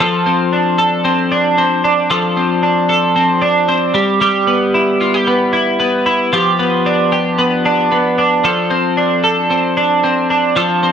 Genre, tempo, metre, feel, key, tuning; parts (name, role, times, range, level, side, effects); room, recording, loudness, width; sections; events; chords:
indie pop; 114 BPM; 4/4; straight; A4 = 442 Hz
twelve-string electric guitar; solo; 0.0-10.9 s; F3 to A4; -12 LUFS; equal; analog chorus
light reverb; dark, warm production, nothing above 10.4 kHz; -12 LUFS; side -8 dB against mid
0.0-10.9 A section
0.0 F6; 4.0 G6; 6.3 G7; 8.4 F6